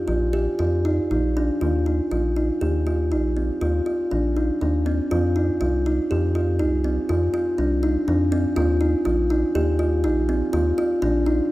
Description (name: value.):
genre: contemporary instrumental, chamber music in an uneven meter.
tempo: 121 BPM.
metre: 7/4.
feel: straight.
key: unclear.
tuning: A4 = 440 Hz.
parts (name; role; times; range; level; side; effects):
kalimba; arpeggios; 0.1-11.4 s; C4 to G4; -21 LUFS; equal; none.
rubbery square bass; bass; 0.1-11.4 s; Bb1 to F2; -24 LUFS; equal; none.
room: moderate concert hall reverb, RT60 1.9 s.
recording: none.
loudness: -19 LUFS.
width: side -17 dB against mid.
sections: 0.0-1.6 A section; 1.6-11.5 B section.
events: none.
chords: 0.0 Ebsus2; 5.1 F5; 8.6 Ebsus2.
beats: 0.08 0.60 1.11 | 1.62 2.12 2.62 3.12 3.62 4.12 4.62 | 5.12 5.61 6.11 6.61 7.10 7.59 8.08 | 8.57 9.06 9.55 10.05 10.54 11.03.